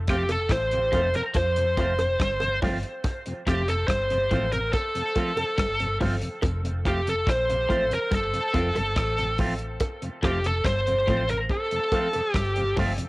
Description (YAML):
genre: roots reggae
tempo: 71 BPM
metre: 4/4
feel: straight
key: F major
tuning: A4 = 440 Hz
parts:
  - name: vintage muted fingered electric bass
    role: bass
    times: 0.0-13.0 s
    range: F1 to F2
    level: -29 LUFS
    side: equal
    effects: none
  - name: bluesy overdriven lead guitar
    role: melody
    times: 0.1-12.7 s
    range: G4 to C5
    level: -25 LUFS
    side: equal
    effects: distortion, cassette tape, dub echo
  - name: electric guitar with an envelope filter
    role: accompaniment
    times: 0.1-12.9 s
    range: F3 to F4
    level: -34 LUFS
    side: right 1 dB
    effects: wide subtle chorus, dub echo
  - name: mellow tonewheel organ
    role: accompaniment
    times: 0.1-13.1 s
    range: F2 to F4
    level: -36 LUFS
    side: equal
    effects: chorus vibrato, slow rotary speaker, dub echo
  - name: damped 70s drum kit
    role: drums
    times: 0.1-13.1 s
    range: hi-hat, kick drum, rim click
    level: -28 LUFS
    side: equal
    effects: cassette tape
  - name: bongos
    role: percussion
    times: 0.3-13.0 s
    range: none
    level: -32 LUFS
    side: right 3 dB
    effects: none
  - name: twangy electric guitar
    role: riff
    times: 0.5-12.9 s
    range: F2 to F3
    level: -33 LUFS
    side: left 2 dB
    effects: ensemble chorus
room: light reverb, studio reverb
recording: home recording on cassette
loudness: -22 LUFS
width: side -22 dB against mid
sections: 0.0-13.1 A section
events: none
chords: 0.0 F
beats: 0.51 1.35 2.20 | 3.04 3.89 4.73 5.58 | 6.42 7.27 8.12 8.96 | 9.81 10.65 11.50 12.34